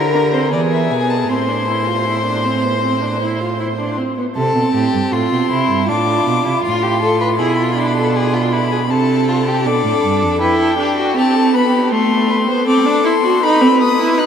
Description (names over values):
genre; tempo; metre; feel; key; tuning
classical, baroque-style fugue for string quartet; 79 BPM; 4/4; straight; A minor; A4 = 440 Hz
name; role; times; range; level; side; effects
warm violin; melody; 0.0-14.3 s; Bb4 to F#6; -20 LUFS; left 5 dB; none
rich violin; second line; 0.0-14.3 s; D4 to C5; -19 LUFS; left 2 dB; none
rich viola; accompaniment; 0.0-14.3 s; A3 to F#4; -17 LUFS; right 2 dB; none
rich cello; bass; 0.0-10.4 s; F2 to E3; -20 LUFS; right 5 dB; none
room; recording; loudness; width
wet huge ambient reverb, RT60 8.4 s; in a vast, echoing space; -13 LUFS; side -8 dB against mid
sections
0.0-4.4 A section; 4.4-14.3 B section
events
none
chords
0.0 Bb/D; 0.5 E; 1.3 Am; 5.9 Bm7b5/A; 7.4 E7/B; 8.9 Am/C; 10.4 Em; 11.9 F#dim/A; 13.4 B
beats
0.52 | 1.29 2.06 2.83 3.59 | 4.36 5.12 5.88 6.64 | 7.39 8.15 8.90 9.65 | 10.41 11.16 11.91 12.67 | 13.43 14.18